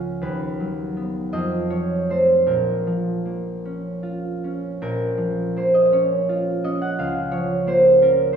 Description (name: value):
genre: classical, solo harp piece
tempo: 49-58 BPM (dotted quarters)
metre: 6/8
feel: rubato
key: Bb minor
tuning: A4 = 440 Hz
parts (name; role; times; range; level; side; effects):
- concert harp; solo; 0.0-8.4 s; Bb1 to Bb5; -19 LUFS; right 1 dB; none
room: wet recital hall reverb, RT60 1.5 s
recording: studio reverb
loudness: -19 LUFS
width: side -7 dB against mid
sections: 0.0-4.8 A section; 4.8-8.4 A section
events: none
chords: 0.2 B/D#; 1.3 F7; 2.5 Bbm; 7.0 Bbm/Db